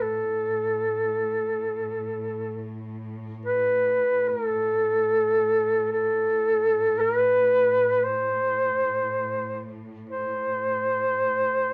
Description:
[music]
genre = caucasian folk, Caucasian lament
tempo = free time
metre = none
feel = none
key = A minor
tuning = A4 = 440 Hz
[part]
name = mellow duduk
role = melody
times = 0.0-11.7 s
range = A4 to C5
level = -24 LUFS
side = equal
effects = none
[part]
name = warm chamber string section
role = drone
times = 0.0-11.7 s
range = A2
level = -40 LUFS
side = equal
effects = none
[sound]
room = light reverb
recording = none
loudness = -24 LUFS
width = mono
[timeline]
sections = 0.0-11.7 A section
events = slowing down 6.0-11.7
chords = none

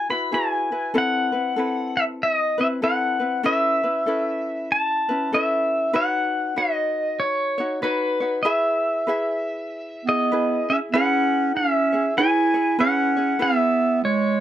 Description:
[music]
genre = Hawaiian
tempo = 96 BPM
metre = 4/4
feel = swing 62% on 8ths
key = E major, C# minor from 10.9 s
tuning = A4 = 440 Hz
[part]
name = pedal steel guitar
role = melody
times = 0.0-14.4 s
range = B4 to B5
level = -21 LUFS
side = left 1 dB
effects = none
[part]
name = ukulele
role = accompaniment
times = 0.0-14.4 s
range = C4 to E5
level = -27 LUFS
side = left 1 dB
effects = none
[part]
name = clear clarinet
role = second line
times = 10.1-14.4 s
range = G#3 to E4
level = -22 LUFS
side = right 5 dB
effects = none
[sound]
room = light reverb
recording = none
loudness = -19 LUFS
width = side -12 dB against mid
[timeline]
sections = 0.0-10.9 A section; 10.9-14.4 B section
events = none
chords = 0.0 Eadd9; 1.0 Amadd9; 3.4 Aadd9; 5.9 Badd9; 8.4 E; 10.9 C#m7; 13.4 E

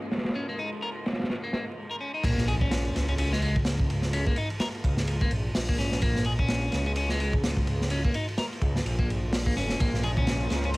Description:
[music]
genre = breakbeat, breaks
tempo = 127 BPM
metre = 4/4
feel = swing 58% on 16ths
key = Bb minor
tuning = A4 = 444 Hz
[part]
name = lush unison pad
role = sustained chords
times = 0.0-1.8, 10.1-10.8 s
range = Ab3 to Eb5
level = -39 LUFS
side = left 1 dB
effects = chorus, phaser, sidechain pumping
[part]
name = crunchy breakbeat drum kit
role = drums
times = 0.1-10.8 s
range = crash cymbal, hi-hat, kick drum, ride cymbal, snare drum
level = -28 LUFS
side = equal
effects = low-pass filter on kick, low-pass filter on cymbals, low-pass filter on hats, low-pass filter on snare, low-pass filter on room
[part]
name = electric guitar at the edge of break-up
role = riff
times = 0.4-10.7 s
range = Ab3 to Bb4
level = -32 LUFS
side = left 1 dB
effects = tape echo
[part]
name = dark detuned saw bass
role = bass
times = 2.2-10.8 s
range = F1 to Db2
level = -28 LUFS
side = equal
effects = none
[part]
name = impact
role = sound effects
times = 2.2-4.1 s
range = none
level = -37 LUFS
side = equal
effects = none
[part]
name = congas and bongos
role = percussion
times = 9.8-10.3 s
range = none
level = -35 LUFS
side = right 1 dB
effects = none
[sound]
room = small room reverb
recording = vinyl crackle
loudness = -25 LUFS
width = side -22 dB against mid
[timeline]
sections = 0.0-2.2 A section; 2.2-10.8 B section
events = filter sweep on clean electric guitar 0.0-2.2; break 1.8-2.2; drop 2.2-10.8; impact 2.2-4.1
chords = 0.0 Bbm7; 2.2 Bbm9

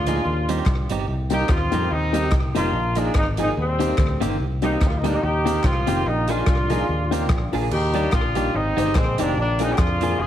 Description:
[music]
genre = ska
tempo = 145 BPM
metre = 4/4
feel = swing 56% on 8ths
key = Eb major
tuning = A4 = 438 Hz
[part]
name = warm horn section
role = melody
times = 0.0-10.3 s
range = G3 to Ab4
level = -24 LUFS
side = left 1 dB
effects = none
[part]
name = fingered electric bass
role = bass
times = 0.0-10.3 s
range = F1 to F2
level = -25 LUFS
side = equal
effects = none
[part]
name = clean electric guitar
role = accompaniment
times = 0.1-10.2 s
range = Eb3 to Ab4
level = -28 LUFS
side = right 8 dB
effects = slapback echo
[part]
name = swinging big-band drum kit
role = drums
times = 0.1-10.1 s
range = crash cymbal, hi-hat, kick drum, rim click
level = -25 LUFS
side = equal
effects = slapback echo
[part]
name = group handclap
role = percussion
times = 0.7-9.9 s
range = none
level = -41 LUFS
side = left 7 dB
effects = none
[part]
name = warm upright piano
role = stabs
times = 1.3-10.2 s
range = C4 to D5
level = -28 LUFS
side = left 8 dB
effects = none
[sound]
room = light reverb, small room ambience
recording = 1960s-style stereo with parts hard left and right, vinyl crackle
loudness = -19 LUFS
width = side -11 dB against mid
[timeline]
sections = 0.0-7.7 A section; 7.7-10.3 B section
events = none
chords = 0.2 Eb6; 1.1 Cm7; 1.9 Eb6; 2.7 Bb7sus4; 3.6 Eb6; 4.4 Cm7; 5.2 Eb6; 6.1 Bb7sus4; 6.9 Eb6; 7.3 Bb7; 7.7 Ebmaj7; 8.5 Abmaj7; 9.4 Bb7

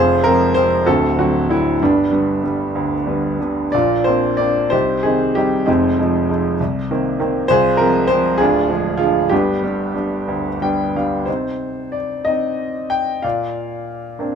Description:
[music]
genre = classical, lyrical solo piano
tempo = 60-67 BPM (dotted quarters)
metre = 6/8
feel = rubato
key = C minor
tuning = A4 = 440 Hz
[part]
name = warm grand piano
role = solo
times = 0.0-14.4 s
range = D1 to G5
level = -15 LUFS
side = equal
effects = none
[sound]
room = light reverb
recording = none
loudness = -15 LUFS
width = side -7 dB against mid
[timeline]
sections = 0.0-11.3 A section; 11.3-14.4 B section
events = grand piano fill 10.3-11.3, 14.2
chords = 0.0 Fm; 0.9 D7; 1.8 G; 3.7 Bbadd9; 4.7 Cm; 5.7 Fm7; 6.6 Cm7; 7.5 Fm/C; 8.4 Ddim; 9.3 G; 11.3 Cm; 13.2 Bbadd9

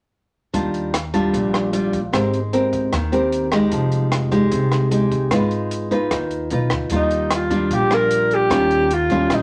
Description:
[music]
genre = bossa nova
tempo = 151 BPM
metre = 4/4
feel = straight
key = Eb major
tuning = A4 = 440 Hz
[part]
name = nylon-string guitar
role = accompaniment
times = 0.5-9.4 s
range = Bb2 to Cb5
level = -22 LUFS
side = equal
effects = none
[part]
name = upright bass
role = bass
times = 0.5-9.4 s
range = F1 to Eb2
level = -27 LUFS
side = equal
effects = none
[part]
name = compact cocktail drum kit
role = drums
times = 0.5-9.4 s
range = hi-hat, kick drum, rim click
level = -28 LUFS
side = equal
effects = none
[part]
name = mellow alto saxophone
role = melody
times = 7.0-9.4 s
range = Eb4 to Bb4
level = -20 LUFS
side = equal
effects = none
[sound]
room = moderate studio reverb, RT60 0.6 s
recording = none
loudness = -19 LUFS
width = mono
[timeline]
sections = 0.5-6.9 A section; 6.9-9.4 B section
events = none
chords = 0.5 Ebmaj9; 2.1 Abmaj9; 3.7 Fm9; 5.3 Abm6; 6.9 Ebmaj9; 8.5 Eb9

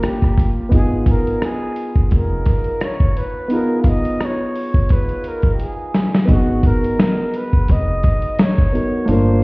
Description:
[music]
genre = hip hop, jazz-hop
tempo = 86 BPM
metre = 4/4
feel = swing 57% on 16ths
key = G# dorian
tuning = A4 = 440 Hz
[part]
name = breathy flugelhorn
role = melody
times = 0.0-9.4 s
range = F#4 to E#5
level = -24 LUFS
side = equal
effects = none
[part]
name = dark concert grand piano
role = accompaniment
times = 0.0-9.4 s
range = A#3 to A#4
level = -22 LUFS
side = equal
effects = none
[part]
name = dusty soul sampler-style drum kit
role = drums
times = 0.0-9.3 s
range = hi-hat, kick drum, rim click, snare drum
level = -16 LUFS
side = equal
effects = vintage 12-bit sampler grit
[part]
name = deep dub fingered electric bass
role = bass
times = 0.7-9.4 s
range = E#1 to G#1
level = -18 LUFS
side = equal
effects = none
[sound]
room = light reverb, digital ambience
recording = heard muffled through a wall, stone room reverb, vinyl crackle, EQ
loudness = -15 LUFS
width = side -26 dB against mid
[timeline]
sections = 0.0-6.3 A section; 6.3-9.4 B section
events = drum fill 5.6-6.3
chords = 0.0 D#7 (rootless); 0.7 G#m69; 6.3 G#m9

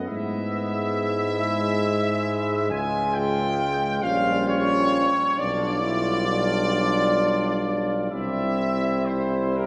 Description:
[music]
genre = classical, hymn-like piece for brass band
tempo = 45 BPM (dotted quarters)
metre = 6/8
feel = uneven beats, rubato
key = unclear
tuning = A4 = 443 Hz
[part]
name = warm flugelhorn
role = second line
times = 0.0-9.7 s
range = E4 to F4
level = -35 LUFS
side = equal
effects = none
[part]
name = warm euphonium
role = accompaniment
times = 0.0-9.7 s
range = G3 to G#3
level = -32 LUFS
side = equal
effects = none
[part]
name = warm trombone section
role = accompaniment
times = 0.0-9.7 s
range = G#3 to G4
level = -31 LUFS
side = equal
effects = none
[part]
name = warm tuba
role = bass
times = 0.0-9.7 s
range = Bb1 to G#2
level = -30 LUFS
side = equal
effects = none
[part]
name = warm trumpet section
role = melody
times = 0.1-9.7 s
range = Bb4 to Ab5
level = -28 LUFS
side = equal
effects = none
[sound]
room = wet cathedral reverb, RT60 4.4 s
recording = none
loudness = -24 LUFS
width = mono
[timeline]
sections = 0.0-9.7 A section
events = none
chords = 0.1 E/G#; 2.7 Db; 4.0 Gm7b5/Bb; 5.4 G7/B; 8.1 C

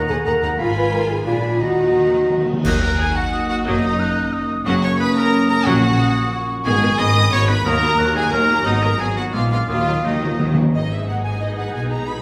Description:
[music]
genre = classical, dramatic, fast romantic movement for symphony orchestra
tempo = 179 BPM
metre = 3/4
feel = straight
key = Eb minor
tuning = A4 = 438 Hz
[part]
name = clear oboe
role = second line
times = 0.0-10.6 s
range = Eb4 to Cb6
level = -28 LUFS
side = equal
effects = none
[part]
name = mellow clarinet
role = second line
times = 0.0-2.5 s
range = D5 to Gb5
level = -33 LUFS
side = equal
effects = none
[part]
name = mellow hollow silver concert flute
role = second line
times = 0.0-12.1 s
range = D#5 to Gb6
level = -28 LUFS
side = equal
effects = none
[part]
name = dark French horn section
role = sustained chords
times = 0.0-10.7 s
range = Gb3 to Cb5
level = -24 LUFS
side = equal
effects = none
[part]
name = concert harp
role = arpeggios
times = 0.0-12.2 s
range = Gb2 to Db6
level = -31 LUFS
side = equal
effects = none
[part]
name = timpani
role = percussion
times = 0.0-2.6, 5.7-6.1, 9.7-10.7 s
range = Bb2 to Eb3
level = -27 LUFS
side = equal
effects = none
[part]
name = warm symphonic violin section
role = melody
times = 0.1-12.2 s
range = B4 to Eb6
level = -28 LUFS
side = equal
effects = none
[part]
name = clear symphonic violin section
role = second line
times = 0.1-12.2 s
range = Eb4 to B5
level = -30 LUFS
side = equal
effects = none
[part]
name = rich symphonic viola section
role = accompaniment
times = 0.1-12.2 s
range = Eb3 to G#4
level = -30 LUFS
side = equal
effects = none
[part]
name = clear symphonic double bass section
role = bass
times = 0.1-12.2 s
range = Gb1 to Eb2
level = -28 LUFS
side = equal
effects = none
[part]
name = rich symphonic cello section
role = bass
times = 0.1-12.2 s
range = Eb2 to Eb3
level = -27 LUFS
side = equal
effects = none
[part]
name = cymbal swell, clash cymbals and concert bass drum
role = percussion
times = 0.6-3.3 s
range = none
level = -30 LUFS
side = equal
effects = none
[sound]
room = wet recital hall reverb, RT60 1.6 s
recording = recorded in a church or concert hall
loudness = -18 LUFS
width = mono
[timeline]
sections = 0.0-2.6 A section; 2.6-10.7 B section; 10.7-12.2 C section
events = timpani fill 1.6-2.6, 9.7-10.7; band accent 2.6-3.0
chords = 0.0 Ebm; 0.6 Fdim/Ab; 1.3 Bb7b9; 1.6 Ebm; 3.7 Ebm/Gb; 4.7 Gb; 5.7 Gb/Bb; 6.7 Abm; 7.7 Ebm; 8.7 Abm7; 9.3 Bb7b9; 9.7 Ebm; 10.7 G#m

